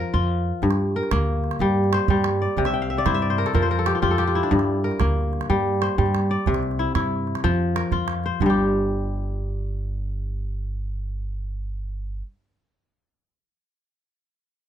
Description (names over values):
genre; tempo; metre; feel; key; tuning
west african traditional, West African string and xylophone music; 123 BPM (dotted quarters); 12/8; straight; G dorian; A4 = 440 Hz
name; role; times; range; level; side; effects
kora; arpeggios; 0.0-12.3 s; G2 to G5; -22 LUFS; left 2 dB; none
upright bass; bass; 0.1-12.2 s; G1 to G2; -25 LUFS; right 1 dB; none
calabash; percussion; 0.6-8.6 s; none; -29 LUFS; right 8 dB; none
room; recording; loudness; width
light reverb; close, detailed microphones; -20 LUFS; side -10 dB against mid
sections
0.0-8.4 A section; 8.4-12.3 B section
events
kora fill 2.7-4.5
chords
0.0 Fsus4; 0.6 Gm; 2.6 C; 3.5 Fmaj13; 4.5 Gm; 6.5 C; 7.4 F5; 8.4 Gsus4